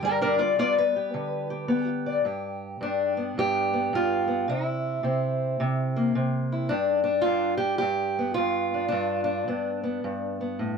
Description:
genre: acoustic country blues, solo or duo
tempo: 108 BPM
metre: 4/4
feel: swing 64% on 8ths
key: G mixolydian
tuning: A4 = 440 Hz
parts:
  - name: fingerpicked steel-string acoustic guitar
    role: solo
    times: 0.0-10.8 s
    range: G2 to D5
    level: -24 LUFS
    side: equal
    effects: none
room: light reverb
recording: close, detailed microphones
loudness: -24 LUFS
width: side -6 dB against mid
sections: 0.0-2.3 A section; 2.3-10.8 B section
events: steel-string acoustic guitar solo 0.0-2.3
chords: 0.0 G7; 4.5 C7; 6.7 G7

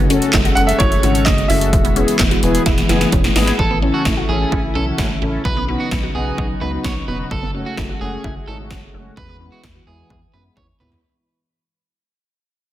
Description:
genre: synth-pop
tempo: 129 BPM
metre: 4/4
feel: straight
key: E major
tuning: A4 = 441 Hz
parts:
  - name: lush unison pad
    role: sustained chords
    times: 0.0-11.0 s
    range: C#3 to F#4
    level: -24 LUFS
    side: equal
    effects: chorus, low-pass filter
  - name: resonant blip pluck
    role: arpeggios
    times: 0.0-11.0 s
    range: B3 to F#4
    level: -27 LUFS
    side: right 1 dB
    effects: phaser, low-pass filter, tape echo
  - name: rubbery square bass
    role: bass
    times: 0.0-11.0 s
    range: E1 to F#2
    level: -22 LUFS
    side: equal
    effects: none
  - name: mellow synth brass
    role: accompaniment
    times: 0.1-11.0 s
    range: G#3 to A4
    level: -23 LUFS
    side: left 3 dB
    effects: chorus, low-pass filter
  - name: 80s electronic pad drums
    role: drums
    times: 0.1-11.0 s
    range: handclaps, hi-hat, kick drum, snare drum, toms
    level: -18 LUFS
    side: equal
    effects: gated reverb on snare and toms
  - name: clear concert grand piano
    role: melody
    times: 0.6-2.8 s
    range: C#5 to F#5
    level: -21 LUFS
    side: right 1 dB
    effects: tape echo
  - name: electric guitar at the edge of break-up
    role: second line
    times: 3.6-10.9 s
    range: F#4 to C#5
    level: -26 LUFS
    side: right 3 dB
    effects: tape echo
room: moderate recital hall reverb, RT60 1.4 s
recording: dense, heavily limited modern master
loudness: -14 LUFS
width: side -13 dB against mid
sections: 0.0-3.6 A section; 3.6-11.0 B section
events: drum fill 2.7-3.6, 10.6-11.0; fade-out 3.6-11.0; filter sweep 3.6-11.0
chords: 0.0 F#madd9; 1.7 Eadd9; 3.6 A; 5.5 Badd9; 7.3 F#madd9; 9.2 Eadd9

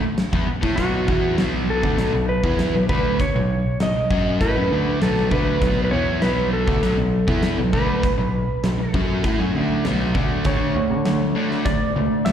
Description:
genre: classic rock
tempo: 99 BPM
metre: 4/4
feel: straight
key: unclear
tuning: A4 = 441 Hz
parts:
  - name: crunchy overdriven guitar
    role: riff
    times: 0.0-12.3 s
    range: B2 to F#4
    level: -26 LUFS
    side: right 10 dB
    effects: slapback echo
  - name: raw garage guitar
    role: riff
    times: 0.0-12.3 s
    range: B2 to F#4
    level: -25 LUFS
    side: left 9 dB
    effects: overdrive, slapback echo
  - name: picked electric bass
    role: bass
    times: 0.0-12.3 s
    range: B1 to D3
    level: -24 LUFS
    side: equal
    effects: none
  - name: big rock drum kit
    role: drums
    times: 0.2-12.3 s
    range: hi-hat, kick drum, snare drum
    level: -24 LUFS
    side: equal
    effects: none
  - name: clean lap steel guitar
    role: melody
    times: 0.8-12.3 s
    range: F#4 to E5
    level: -24 LUFS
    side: equal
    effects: slapback echo, plate reverb
room: light reverb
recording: live gig heard through the venue's PA, recital hall reverb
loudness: -18 LUFS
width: side -9 dB against mid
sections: 0.0-10.5 A section; 10.5-12.3 B section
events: none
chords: 0.0 B5; 10.5 D5

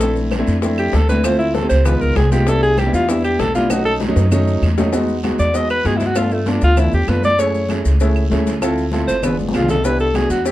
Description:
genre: Afro-Cuban jazz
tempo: 195 BPM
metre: 4/4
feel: straight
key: unclear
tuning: A4 = 441 Hz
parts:
  - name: clear alto saxophone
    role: melody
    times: 0.0-10.5 s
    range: A3 to D#5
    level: -18 LUFS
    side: equal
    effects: none
  - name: warm concert grand piano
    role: accompaniment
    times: 0.0-10.5 s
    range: F#3 to A4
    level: -20 LUFS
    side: equal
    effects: none
  - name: upright bass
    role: bass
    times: 0.0-10.5 s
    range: G1 to G2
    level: -18 LUFS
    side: equal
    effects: none
  - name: bongos and cowbell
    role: percussion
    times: 0.0-10.5 s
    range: none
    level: -28 LUFS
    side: left 6 dB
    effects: none
  - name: congas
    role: percussion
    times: 0.0-10.5 s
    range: none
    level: -25 LUFS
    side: left 1 dB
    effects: none
  - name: guiro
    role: percussion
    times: 0.0-10.5 s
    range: none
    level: -35 LUFS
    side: right 4 dB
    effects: none
  - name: maracas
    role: percussion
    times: 0.0-10.5 s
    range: none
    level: -36 LUFS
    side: left 6 dB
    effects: none
  - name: claves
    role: percussion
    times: 0.3-10.3 s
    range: none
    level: -33 LUFS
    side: right 7 dB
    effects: none
room: moderate club ambience, RT60 0.5 s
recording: dark, warm production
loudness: -14 LUFS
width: side -15 dB against mid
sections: 0.0-4.9 A section; 4.9-10.5 A section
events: alto saxophone solo 0.0-10.5; drum fill 3.7-4.9, 9.4-9.8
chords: 0.0 Bbmaj9#11; 1.2 Dm7; 1.9 Db9; 2.5 Cmaj9; 3.7 B7; 4.9 Emaj9; 6.2 G9; 7.4 F#m9; 8.6 Dm7; 9.2 G7b9; 9.8 Cmaj9

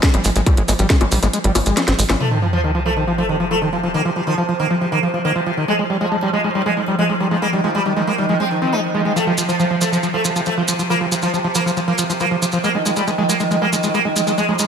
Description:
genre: psychedelic trance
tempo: 138 BPM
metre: 4/4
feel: straight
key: unclear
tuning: A4 = 439 Hz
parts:
  - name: pulsing gated texture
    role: sustained chords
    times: 0.0-14.7 s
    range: F3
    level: -24 LUFS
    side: right 2 dB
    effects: chorus, built-in reverb, sidechain pumping
  - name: screaming distorted acid line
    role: riff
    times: 0.0-14.6 s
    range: Eb3 to C4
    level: -21 LUFS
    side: equal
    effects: distortion, chorus, auto-pan, cassette tape, sidechain pumping, dub echo
  - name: electronic kick drum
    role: drums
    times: 0.0-1.0 s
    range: none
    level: -14 LUFS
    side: equal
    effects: overdrive, small room reverb
  - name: garage drum kit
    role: drums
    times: 0.0-2.2 s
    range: bongos, hi-hat, snare drum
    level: -20 LUFS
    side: left 2 dB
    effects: overdrive, small room reverb
  - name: maracas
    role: percussion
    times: 0.0-2.2, 9.2-14.7 s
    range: none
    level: -24 LUFS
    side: right 1 dB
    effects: none
  - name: tight sequencer bass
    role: bass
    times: 0.1-2.2 s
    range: Ab1 to Bb1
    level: -18 LUFS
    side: equal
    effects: none
  - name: sitar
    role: melody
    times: 2.2-14.7 s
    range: Ab2 to Eb4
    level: -20 LUFS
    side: right 1 dB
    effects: phaser, sidechain pumping, digital delay
  - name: sub drop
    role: sound effects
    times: 2.2-3.9 s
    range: none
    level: -22 LUFS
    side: equal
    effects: none
room: light reverb, digital ambience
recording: none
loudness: -16 LUFS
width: side -7 dB against mid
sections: 0.0-2.2 A section; 2.2-14.7 B section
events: kick drops out 1.3-2.2; drum fill 1.8-2.2; impact 2.2-3.9; filter sweep on acid bass 2.2-14.7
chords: 0.0 Abmaj7(no3); 2.2 F5; 5.7 Ab5; 9.2 F5; 12.6 Ab5

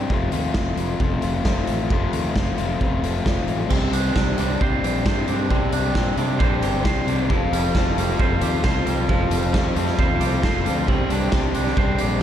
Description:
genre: indie rock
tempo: 134 BPM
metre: 4/4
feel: straight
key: unclear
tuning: A4 = 441 Hz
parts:
  - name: overdriven semi-hollow guitar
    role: riff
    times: 0.0-12.2 s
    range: F2 to A4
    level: -24 LUFS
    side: left 4 dB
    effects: slapback echo
  - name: fuzz fingered electric bass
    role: bass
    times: 0.0-12.2 s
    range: F1 to C3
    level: -26 LUFS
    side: right 1 dB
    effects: overdrive
  - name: raw garage drum kit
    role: drums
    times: 0.1-12.1 s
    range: crash cymbal, hi-hat, kick drum, snare drum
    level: -23 LUFS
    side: right 1 dB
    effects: none
  - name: mellow tonewheel organ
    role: sustained chords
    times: 3.7-12.2 s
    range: G4 to C6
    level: -33 LUFS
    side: right 2 dB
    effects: none
  - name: twangy electric guitar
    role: riff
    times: 3.7-12.2 s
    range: F3 to C5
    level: -27 LUFS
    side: right 9 dB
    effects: lush chorus, tape echo
room: moderate recital hall reverb, RT60 1.5 s, small room ambience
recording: big arena sound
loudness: -19 LUFS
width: side -10 dB against mid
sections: 0.0-3.7 A section; 3.7-12.2 A section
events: none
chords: 0.1 F; 3.7 Csus2; 7.3 Fadd9; 10.9 Csus2

